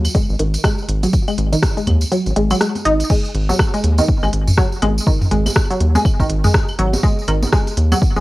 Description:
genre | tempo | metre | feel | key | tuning
minimal techno | 122 BPM | 4/4 | swing 59% on 16ths | unclear | A4 = 444 Hz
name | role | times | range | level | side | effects
rubbery square bass | bass | 0.0-8.2 s | G#1 to D#2 | -17 LUFS | equal | sidechain pumping
garage drum kit | drums | 0.0-8.0 s | crash cymbal, hi-hat, rim click | -23 LUFS | equal | none
electronic claves, congas and toms | percussion | 0.0-8.2 s | none | -22 LUFS | equal | analog delay
resonant blip pluck | riff | 0.1-8.2 s | D#3 to D#4 | -20 LUFS | equal | lush chorus, sidechain pumping, cassette tape, analog delay
electronic kick drum | drums | 0.1-8.1 s | none | -16 LUFS | equal | none
tambourine | percussion | 0.1-8.2 s | none | -29 LUFS | right 2 dB | none
room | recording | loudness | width
little or no reverb | home recording on cassette | -14 LUFS | side -18 dB against mid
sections
0.0-3.1 A section; 3.1-8.2 B section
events
filter sweep on synth pluck 0.0-3.1; kick drops out 2.1-3.1; drop 3.1-8.2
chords
0.0 G#5

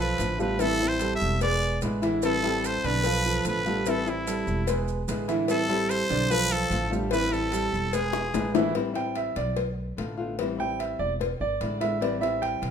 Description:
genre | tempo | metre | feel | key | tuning
latin, Cuban son and guajira | 147 BPM | 4/4 | straight | A minor | A4 = 440 Hz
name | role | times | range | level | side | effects
growling trumpet | melody | 0.0-8.5 s | E4 to E5 | -28 LUFS | equal | none
warm grand piano | arpeggios | 0.0-12.7 s | D3 to G5 | -29 LUFS | right 4 dB | none
upright bass | bass | 0.0-12.7 s | E1 to B1 | -32 LUFS | equal | none
flamenco guitar | accompaniment | 0.2-12.7 s | D3 to F4 | -31 LUFS | left 6 dB | none
cowbell and bongos | percussion | 0.2-12.7 s | none | -31 LUFS | left 7 dB | none
maracas | percussion | 0.2-8.8 s | none | -42 LUFS | right 9 dB | none
room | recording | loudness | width
moderate large studio reverb, RT60 1.2 s | minimal, uncompressed stereo recording | -24 LUFS | side -7 dB against mid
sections
0.0-8.8 A section; 8.8-12.7 B section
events
drum fill 8.1-8.8; grand piano solo 8.8-12.7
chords
0.0 Bm7b5; 0.6 Am7; 1.4 E7; 2.2 Am7; 3.0 Bm7b5; 3.9 Am7; 4.7 E7; 5.5 Am7; 6.3 Bm7b5; 7.1 Am7; 7.9 E7; 8.8 Am7; 9.6 Bm7b5; 10.4 Am7; 11.2 E7; 12.0 Am7

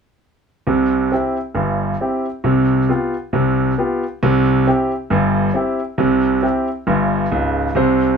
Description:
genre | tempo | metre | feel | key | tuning
jazz, stride piano | 135 BPM | 4/4 | swing 58% on 8ths | C major | A4 = 440 Hz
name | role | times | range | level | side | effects
clear concert grand piano | solo | 0.7-8.2 s | Db1 to C5 | -15 LUFS | equal | none
room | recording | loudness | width
moderate studio ambience, RT60 0.5 s | dark, warm production | -15 LUFS | side -6 dB against mid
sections
0.7-7.8 A section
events
none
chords
0.7 C; 2.4 G7/C; 4.2 C

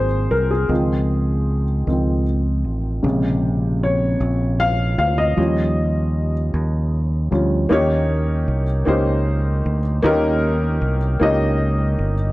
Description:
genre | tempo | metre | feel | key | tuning
slow gospel | 51 BPM (dotted quarters) | 6/8 | straight | unclear | A4 = 440 Hz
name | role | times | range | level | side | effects
warm upright piano | accompaniment | 0.0-12.3 s | C3 to F5 | -20 LUFS | left 1 dB | none
fingered electric bass | bass | 0.0-12.3 s | G1 to Eb2 | -19 LUFS | equal | none
room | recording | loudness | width
light reverb, small room ambience | none | -17 LUFS | side -18 dB against mid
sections
0.0-7.7 A section; 7.7-12.3 B section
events
upright piano solo 0.0-7.7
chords
0.0 Ab7; 0.7 Dbmaj7; 3.0 Bbm7; 5.4 Eb7

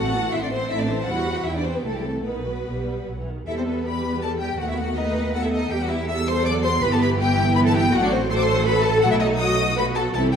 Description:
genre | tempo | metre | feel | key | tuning
quick classical-period movement for string orchestra | 160 BPM | 3/4 | rubato | E minor | A4 = 440 Hz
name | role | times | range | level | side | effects
clear studio violin section | melody | 0.0-10.4 s | B4 to E6 | -27 LUFS | left 4 dB | none
rich symphonic violin section | second line | 0.0-10.4 s | B3 to F#5 | -26 LUFS | left 2 dB | none
warm symphonic viola section | accompaniment | 0.0-10.4 s | D#3 to G4 | -25 LUFS | right 1 dB | none
rich symphonic cello section | bass | 0.0-10.4 s | G3 to B4 | -28 LUFS | right 2 dB | none
rich symphonic double bass section | bass | 0.0-10.4 s | G1 to E2 | -26 LUFS | right 3 dB | none
room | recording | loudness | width
moderate scoring stage reverb, RT60 1.6 s | dark, warm production | -20 LUFS | side -7 dB against mid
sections
0.0-3.5 A section; 3.5-10.4 B section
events
none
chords
0.0 Am; 1.1 Em; 1.8 Am/C; 2.3 B; 3.5 Em; 4.6 B7/D#; 5.7 Em; 6.8 Em/G; 7.9 F#dim/A; 9.0 B7

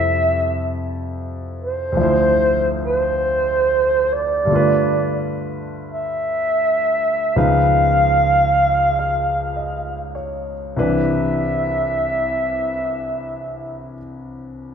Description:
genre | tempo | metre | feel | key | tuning
jazz ballad | 32-51 BPM | 4/4 | swing 68% on 8ths | C major | A4 = 440 Hz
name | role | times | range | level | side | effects
breathy clarinet | melody | 0.0-13.9 s | C5 to F5 | -18 LUFS | right 1 dB | none
clear concert grand piano | accompaniment | 0.0-14.7 s | C2 to F5 | -22 LUFS | equal | none
room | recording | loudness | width
moderate scoring stage reverb, RT60 1.6 s | recorded in a church or concert hall | -16 LUFS | side -7 dB against mid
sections
0.0-10.7 A section; 10.7-14.7 B section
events
slowing down 0.0-10.7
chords
0.0 Fmaj9; 2.0 Dm7; 4.5 G7; 7.4 Db9; 10.7 Cmaj9

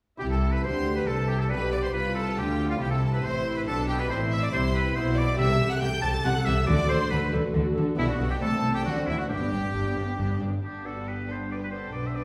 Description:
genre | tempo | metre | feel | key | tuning
classical, baroque-style concerto movement with solo episodes | 139 BPM | 3/4 | straight | C major, G major from 5.4 s | A4 = 440 Hz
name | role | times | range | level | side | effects
clear oboe | melody | 0.2-12.2 s | E4 to A5 | -34 LUFS | equal | none
rich chamber violin section | melody | 0.2-12.2 s | E5 to A6 | -39 LUFS | equal | none
clear chamber violin section | second line | 0.2-12.2 s | D4 to A5 | -37 LUFS | equal | none
lute | accompaniment | 0.2-12.2 s | G2 to A4 | -37 LUFS | equal | none
rich chamber viola section | accompaniment | 0.2-12.2 s | A3 to A4 | -35 LUFS | equal | none
rich chamber double bass section | bass | 0.2-12.2 s | G1 to D2 | -32 LUFS | equal | none
warm chamber cello section | bass | 0.2-12.2 s | G2 to D3 | -32 LUFS | equal | none
room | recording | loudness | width
wet recital hall reverb, RT60 1.3 s | heard from further back in the room | -26 LUFS | mono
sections
0.2-10.6 A section; 10.6-12.2 B section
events
none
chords
0.2 C; 1.5 G/B; 2.8 C; 4.1 Am; 5.4 Am7/C; 6.7 D; 8.0 G/B; 8.4 Am/C; 8.9 D7; 9.3 G

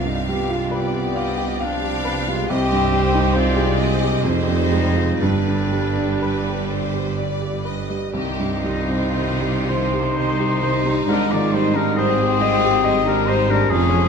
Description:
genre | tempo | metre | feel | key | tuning
classical, romantic movement for piano and orchestra | 54-71 BPM | 3/4 | rubato | C minor | A4 = 439 Hz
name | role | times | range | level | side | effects
rich studio violin section | melody | 0.0-14.1 s | B4 to G5 | -35 LUFS | left 3 dB | none
warm baby grand piano | melody | 0.0-14.1 s | C2 to F5 | -22 LUFS | right 1 dB | none
mellow hollow silver concert flute | second line | 0.0-14.1 s | D5 to D6 | -30 LUFS | left 2 dB | none
rich studio violin section | second line | 0.0-14.1 s | C4 to F5 | -30 LUFS | left 3 dB | none
warm clarinet | second line | 0.0-14.1 s | D4 to D5 | -26 LUFS | left 3 dB | none
rich studio viola section | accompaniment | 0.0-14.1 s | Eb3 to Ab4 | -29 LUFS | right 2 dB | none
warm French horn section | sustained chords | 0.0-14.1 s | F3 to F4 | -26 LUFS | left 6 dB | none
dark tuba | bass | 0.0-14.1 s | F1 to C2 | -28 LUFS | right 5 dB | none
rich studio cello section | bass | 0.0-14.1 s | F2 to C3 | -28 LUFS | right 3 dB | none
rich studio double bass section | bass | 0.0-14.1 s | F1 to C2 | -27 LUFS | right 3 dB | none
room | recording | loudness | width
wet recital hall reverb, RT60 1.4 s | none | -17 LUFS | side -6 dB against mid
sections
0.0-14.1 A section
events
none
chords
0.0 G7/C; 2.5 Cm; 4.2 Fm; 5.2 G; 8.2 Cm; 11.1 Abmaj7

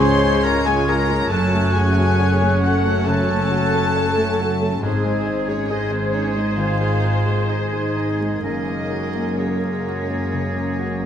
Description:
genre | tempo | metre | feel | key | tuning
cinematic, emotional film score for orchestra | 62-70 BPM | 4/4 | rubato | unclear | A4 = 440 Hz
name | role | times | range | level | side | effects
warm symphonic violin section | melody | 0.0-11.1 s | C5 to C6 | -27 LUFS | left 4 dB | none
clear oboe | second line | 0.0-11.1 s | Ab4 to Db5 | -30 LUFS | right 2 dB | none
dark symphonic violin section | second line | 0.0-11.1 s | Ab3 to Db4 | -29 LUFS | left 1 dB | none
silver concert flute | second line | 0.0-11.1 s | Gb6 to Bb6 | -30 LUFS | left 1 dB | none
warm clarinet | second line | 0.0-11.1 s | C4 to C5 | -30 LUFS | equal | none
bright concert grand piano | accompaniment | 0.0-11.1 s | Gb2 to Db5 | -27 LUFS | equal | none
dark symphonic viola section | accompaniment | 0.0-11.1 s | F4 to C5 | -28 LUFS | right 1 dB | none
warm French horn section | sustained chords | 0.0-11.1 s | Ab3 to Eb4 | -28 LUFS | left 2 dB | none
concert harp | arpeggios | 0.0-11.1 s | Gb2 to Ab5 | -30 LUFS | left 7 dB | none
warm symphonic cello section | bass | 0.0-11.1 s | Db2 to Ab2 | -24 LUFS | right 2 dB | none
warm symphonic double bass section | bass | 0.0-11.1 s | Gb1 to Db2 | -25 LUFS | right 1 dB | none
room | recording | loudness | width
moderate recital hall reverb, RT60 1.7 s | vinyl crackle | -17 LUFS | side -9 dB against mid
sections
0.0-11.1 A section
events
none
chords
0.0 Db; 1.3 Gbm; 4.8 Ab; 8.4 Gbadd9

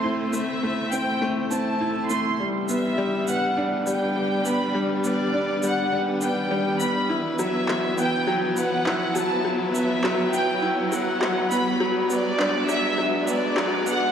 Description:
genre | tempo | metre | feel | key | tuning
piano and strings electronica | 102 BPM | 4/4 | straight | unclear | A4 = 440 Hz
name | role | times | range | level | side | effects
dark studio violin section | melody | 0.0-14.1 s | D5 to C6 | -26 LUFS | equal | none
rich studio string section | sustained chords | 0.0-14.1 s | F#3 to C5 | -30 LUFS | equal | none
bright grand piano | riff | 0.0-14.1 s | F#3 to E4 | -24 LUFS | left 1 dB | none
warm sub bass | bass | 0.0-14.1 s | none | barely audible | none | none
riser | sound effects | 0.5-14.1 s | none | -35 LUFS | right 2 dB | none
electronic shaker and handclaps | drums | 0.3-14.0 s | none | -32 LUFS | equal | overdrive
room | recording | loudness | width
wet concert hall reverb, RT60 2.0 s, small room ambience | dark, warm production, high-pass filter | -21 LUFS | side -8 dB against mid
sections
0.0-14.1 A section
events
build-up 0.0-14.1; riser 0.5-14.1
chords
0.0 Am; 2.4 G/A; 7.1 Esus2/A

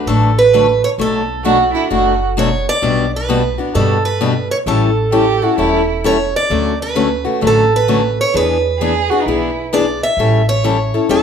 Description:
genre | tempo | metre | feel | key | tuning
acoustic string swing (jazz manouche) | 131 BPM | 4/4 | swing 65% on 8ths | D major | A4 = 440 Hz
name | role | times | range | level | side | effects
picked steel-string acoustic guitar | accompaniment | 0.0-11.2 s | B2 to B4 | -16 LUFS | left 4 dB | none
picked steel-string acoustic guitar | melody | 0.1-11.2 s | A4 to E5 | -17 LUFS | right 3 dB | none
upright bass | bass | 0.1-11.2 s | E1 to G2 | -20 LUFS | right 1 dB | none
warm violin | second line | 1.4-2.3, 5.1-5.9, 8.8-9.6 s | Eb4 to G#4 | -17 LUFS | right 5 dB | none
room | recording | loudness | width
moderate large studio reverb, RT60 0.9 s | band playing live in one room | -12 LUFS | side -7 dB against mid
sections
0.0-11.2 A section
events
none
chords
0.0 D6; 1.0 Bm7; 2.8 Gmaj7/B; 4.7 A7; 6.5 Dmaj7; 8.3 E7; 10.2 A7

